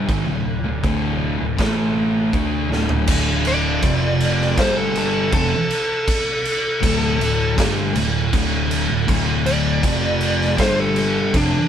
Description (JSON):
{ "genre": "stoner and doom metal", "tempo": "80 BPM", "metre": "4/4", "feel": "straight", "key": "D minor", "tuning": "A4 = 442 Hz", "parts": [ { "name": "thick fuzz guitar", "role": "riff", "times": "0.0-11.5 s", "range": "D2 to D4", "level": "-23 LUFS", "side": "left 6 dB", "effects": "distortion" }, { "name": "thick fuzz guitar", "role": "riff", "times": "0.0-11.5 s", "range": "D2 to D4", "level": "-23 LUFS", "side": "right 5 dB", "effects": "distortion" }, { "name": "picked electric bass", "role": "bass", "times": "0.0-11.5 s", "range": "D1 to D2", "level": "-25 LUFS", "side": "equal", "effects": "overdrive" }, { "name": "raw garage drum kit", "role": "drums", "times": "0.1-11.5 s", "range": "crash cymbal, kick drum, snare drum, toms", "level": "-21 LUFS", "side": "right 1 dB", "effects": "none" }, { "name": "fuzz lead guitar", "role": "melody", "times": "3.5-11.7 s", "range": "D4 to D5", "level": "-22 LUFS", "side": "equal", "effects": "distortion" } ], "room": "moderate stone room reverb, RT60 1.1 s", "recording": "band playing live in one room", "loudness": "-17 LUFS", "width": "side -9 dB against mid", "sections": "0.0-3.1 A section; 3.1-11.7 B section", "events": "drum fill 2.7-3.1; lead electric guitar solo 3.1-11.7", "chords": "0.1 D5; 1.6 A5; 2.3 D5; 3.8 F5; 4.6 G5; 5.3 D5; 9.8 F5; 10.6 G5" }